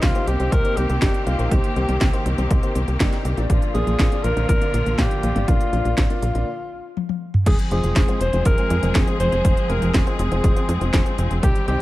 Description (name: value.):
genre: italo disco.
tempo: 121 BPM.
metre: 4/4.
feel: straight.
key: unclear.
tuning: A4 = 440 Hz.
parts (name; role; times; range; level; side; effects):
warm alto saxophone; melody; 0.0-11.8 s; F4 to C5; -26 LUFS; equal; tape echo.
bright symphonic string section; sustained chords; 0.0-11.8 s; D3 to Ab4; -28 LUFS; left 1 dB; none.
dark baby grand piano; stabs; 0.0-11.8 s; Bb2 to F5; -29 LUFS; left 2 dB; none.
tight sequencer bass; bass; 0.0-11.8 s; F1 to Bb2; -22 LUFS; equal; tube saturation.
electronic kick drum; drums; 0.0-11.5 s; none; -20 LUFS; equal; small room ambience.
house drum kit; drums; 0.0-11.8 s; crash cymbal, hi-hat, snare drum, toms; -26 LUFS; equal; small room ambience.
room: small room reverb.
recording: none.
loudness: -17 LUFS.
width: side -17 dB against mid.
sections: 0.0-7.5 A section; 7.5-11.8 B section.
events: break 6.5-7.5; drum fill 7.0-7.5.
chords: 0.0 Cm7; 3.5 Bb; 7.5 Fm.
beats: 0.03 0.52 1.02 | 1.51 2.01 2.50 3.00 | 3.50 3.99 4.49 4.99 | 5.48 5.98 6.47 6.97 | 7.46 7.96 8.46 8.95 | 9.45 9.94 10.44 10.94 | 11.43.